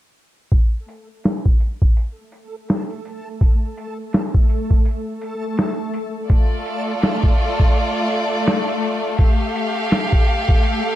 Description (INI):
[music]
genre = trip hop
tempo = 83 BPM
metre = 4/4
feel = swing 59% on 16ths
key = D minor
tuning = A4 = 440 Hz
[part]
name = boom bap sampler-style drum kit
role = drums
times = 0.5-10.8 s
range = hi-hat, kick drum, snare drum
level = -16 LUFS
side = equal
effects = low-pass filter on hats, low-pass filter on kick, low-pass filter on snare, low-pass filter on room
[part]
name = backwards swelling texture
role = texture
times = 2.5-11.0 s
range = A3 to A4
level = -27 LUFS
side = left 1 dB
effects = built-in reverb
[part]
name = warm studio violin section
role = sustained chords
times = 6.3-11.0 s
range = A3 to F5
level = -21 LUFS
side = equal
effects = vintage 12-bit sampler grit
[sound]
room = digital ambience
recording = dark, warm production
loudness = -17 LUFS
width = side -14 dB against mid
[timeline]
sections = 0.5-11.0 A section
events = none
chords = 0.5 N.C.; 6.3 Dm/A; 9.2 Gsus2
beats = | 0.52 1.25 1.97 2.69 | 3.42 4.14 4.86 5.58 | 6.31 7.03 7.75 8.48 | 9.20 9.92 10.64